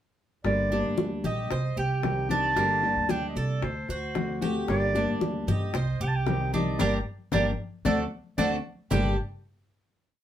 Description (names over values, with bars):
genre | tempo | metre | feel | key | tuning
latin, Cuban son and guajira | 114 BPM | 4/4 | straight | G harmonic minor | A4 = 440 Hz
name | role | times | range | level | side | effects
flamenco guitar | accompaniment | 0.4-9.1 s | G2 to G4 | -30 LUFS | left 2 dB | none
upright bass | bass | 0.4-9.2 s | G1 to G2 | -30 LUFS | right 1 dB | none
bongos | percussion | 0.4-9.0 s | none | -33 LUFS | left 3 dB | none
warm clarinet | melody | 0.5-9.2 s | C5 to A5 | -29 LUFS | right 2 dB | none
congas | percussion | 0.5-9.0 s | none | -34 LUFS | left 2 dB | none
Cuban tres | arpeggios | 0.7-9.2 s | G3 to C5 | -34 LUFS | right 3 dB | none
room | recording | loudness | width
wet studio ambience, RT60 0.5 s | band playing live in one room | -25 LUFS | side -11 dB against mid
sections
0.5-8.9 montuno (vamp); 8.9-10.2 final chord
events
band accent 6.8-8.9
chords
0.5 Gm; 1.5 Cm; 2.6 Gm; 3.6 D7; 4.7 Gm; 5.7 Cm; 6.8 Gm; 7.9 D7; 8.9 Gm